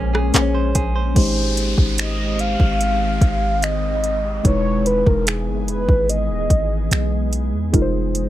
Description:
contemporary R&B; 73 BPM; 4/4; straight; Ab major; A4 = 440 Hz
mellow horn-like synth lead; melody; 0.0-7.3 s; G#4 to Ab5; -23 LUFS; equal; chorus
muted felt-like synth keys; accompaniment; 0.0-8.3 s; Ab3 to Db5; -25 LUFS; left 2 dB; chorus
glassy FM pad; sustained chords; 0.0-8.3 s; Bb2 to Eb5; -28 LUFS; left 1 dB; ensemble chorus, built-in reverb, sidechain pumping
direct-recorded clean electric guitar; arpeggios; 0.0-1.7 s; Bb3 to C5; -27 LUFS; right 5 dB; spring reverb, ping-pong delay
warm 808-style bass; bass; 0.0-8.3 s; D#1 to E2; -22 LUFS; equal
smooth R&B drum kit; drums; 0.1-8.3 s; crash cymbal, finger snaps, handclaps, hi-hat, kick drum, rim click; -18 LUFS; equal; overdrive
downlifter; sound effects; 1.2-7.7 s; -31 LUFS; equal
little or no reverb; -16 LUFS; side -13 dB against mid
0.0-1.2 A section; 1.2-8.3 B section
0.0 Bbm9; 1.2 Abmaj7; 4.4 Emaj7; 7.7 Fm7
0.34 | 1.16 1.98 2.80 3.63 | 4.45 5.27 6.09 6.91 | 7.74

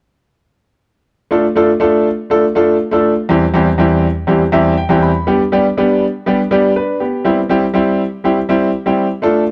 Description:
soul; 121 BPM; 4/4; straight; A4 = 440 Hz
warm grand piano; solo; 1.3-9.4 s; E2 to B5; -14 LUFS; equal
light reverb; -14 LUFS; mono
1.3-9.2 A section
grand piano fill 4.3-5.3
1.3 Dm; 3.3 C/E; 5.3 G; 7.3 C
| 1.30 1.80 2.30 2.79 | 3.29 3.79 4.28 4.78 | 5.27 5.77 6.26 6.76 | 7.25 7.75 8.24 8.74 | 9.23

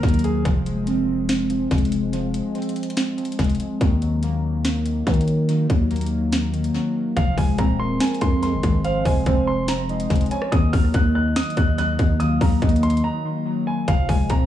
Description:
hip hop, trap; 143 BPM; 4/4; half-time; F phrygian; A4 = 440 Hz
warm concert grand piano; melody; 0.0-0.4, 7.2-14.5 s; Ab4 to Gb6; -28 LUFS; right 2 dB; low-pass filter, tape echo
warbly lo-fi synth keys; accompaniment; 0.0-14.5 s; Eb3 to C4; -24 LUFS; equal; chorus, phaser, low-pass filter, tape echo
growling 808-style bass; bass; 0.0-14.5 s; Eb1 to Eb3; -22 LUFS; left 1 dB
trap drum kit; drums; 0.0-14.4 s; hi-hat, kick drum, rim click, snare drum; -22 LUFS; equal; overdrive, vintage 12-bit sampler grit, tape echo
soft octave-layered synth lead; second line; 7.8-13.4 s; Bb4 to F5; -29 LUFS; right 4 dB; chorus, tremolo, tape echo
light reverb; echo-heavy mix, studio reverb; -18 LUFS; side -11 dB against mid
0.0-7.2 A section; 7.2-14.5 B section
break 0.5-7.2, 13.0-13.9
0.5 Fm; 3.8 Ebm; 7.2 Fm; 10.5 Ebm; 13.9 Fm
0.03 | 0.45 0.87 1.29 1.71 | 2.13 2.55 2.97 3.39 | 3.81 4.23 4.65 5.07 | 5.49 5.91 6.33 6.75 | 7.17 7.58 8.01 8.42 | 8.84 9.26 9.68 10.10 | 10.52 10.94 11.36 11.78 | 12.20 12.62 13.04 13.46 | 13.88 14.30

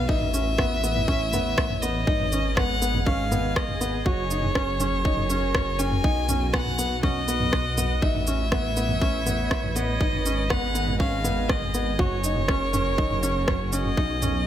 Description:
piano and strings electronica; 121 BPM; 4/4; straight; A4 = 437 Hz
clear violin; melody; 0.0-14.5 s; C#5 to G#5; -28 LUFS; left 1 dB
dark string quartet; sustained chords; 0.0-14.5 s; B2 to F#5; -34 LUFS; right 3 dB
dark detuned saw bass; bass; 0.0-14.5 s; F#1 to B1; -28 LUFS; equal; sidechain pumping
felt-muted upright piano; riff; 0.1-14.4 s; B3 to F#4; -29 LUFS; left 1 dB
electronic kick drum; drums; 0.1-14.1 s; -24 LUFS; equal; overdrive
organic electronic drum kit; drums; 0.2-14.3 s; rim click, shaker, toms; -30 LUFS; right 1 dB; overdrive
light reverb; -22 LUFS; side -11 dB against mid
0.0-14.5 A section
0.1 Aadd9; 2.1 G#m; 4.1 F#add9; 6.0 B; 8.0 Aadd9; 10.0 G#m; 12.0 F#add9
| 0.09 0.59 1.08 1.58 | 2.08 2.57 3.07 3.56 | 4.06 4.55 5.05 5.55 | 6.04 6.54 7.03 7.53 | 8.03 8.52 9.02 9.51 | 10.01 10.51 11.00 11.50 | 11.99 12.49 12.98 13.48 | 13.98

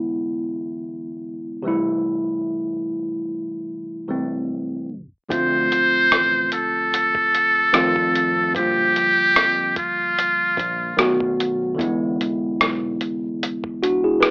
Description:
lo-fi hip hop; 74 BPM; 4/4; swing 57% on 16ths; D minor; A4 = 440 Hz
tine electric piano; accompaniment; 0.0-14.3 s; C3 to B4; -22 LUFS; equal; medium stereo tremolo, cassette tape
trumpet with metal mute; melody; 5.3-11.2 s; F4 to C5; -17 LUFS; equal; cassette tape
fingered electric bass; bass; 5.3-13.0 s; A1 to F2; -32 LUFS; equal
lo-fi sampler-style drum kit; drums; 5.3-14.3 s; hi-hat, kick drum, rim click; -20 LUFS; equal; cassette tape
moderate studio reverb, RT60 0.6 s; home recording on cassette, tape stop, AM radio sound; -18 LUFS; side -39 dB against mid
0.0-5.3 A section; 5.3-14.3 B section
tape stop 4.9-5.3
0.0 E7; 1.7 Am7; 5.3 Dm7; 7.7 F7; 8.5 Bb6; 11.0 B7; 11.8 E7
0.44 1.25 | 2.06 2.87 3.68 4.49 | 5.30 6.11 6.92 7.74 | 8.54 9.36 10.17 10.98 | 11.79 12.60 13.41 14.22

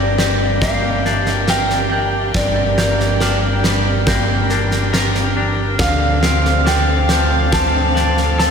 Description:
post-rock; 69 BPM; 4/4; straight; G minor; A4 = 440 Hz
electric slide guitar; melody; 0.0-8.5 s; D5 to A5; -21 LUFS; equal; tape echo
warm chamber string section; sustained chords; 0.0-8.5 s; D4 to G5; -24 LUFS; equal
glockenspiel with soft plastic mallets; arpeggios; 0.0-8.5 s; F6 to Bb6; -25 LUFS; right 2 dB; tape echo
twangy electric guitar; arpeggios; 0.0-8.5 s; G2 to Bb4; -23 LUFS; left 3 dB; lush chorus, tape echo
fingered electric bass; bass; 0.0-8.5 s; G1 to D2; -19 LUFS; equal
huge arena drum kit; drums; 0.2-8.5 s; kick drum, snare drum; -19 LUFS; right 1 dB
wet huge ambient reverb, RT60 7.7 s; dreamy mix soaked in reverb; -14 LUFS; side -6 dB against mid
0.0-8.5 A section
0.0 Gm; 5.8 Dm7
0.62 1.49 | 2.35 3.21 4.08 4.94 | 5.80 6.67 7.53 8.40

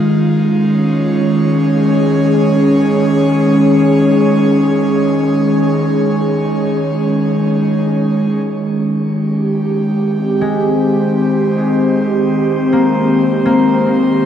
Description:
ambient; free time; Ab major; A4 = 440 Hz
airy breathy pad; sustained chords; 0.0-14.3 s; Eb3 to Db5; -12 LUFS; equal; chorus, shimmer reverb
concert harp; arpeggios; 10.4-14.3 s; Ab3 to Bb3; -19 LUFS; left 1 dB; diffuse ambient delay, shimmer reverb
wet cathedral reverb, RT60 5.8 s; dark, warm production; -11 LUFS; side -9 dB against mid
0.0-8.5 A section; 8.5-14.3 B section
0.0 Dbsus2; 8.5 Abmaj7
free time

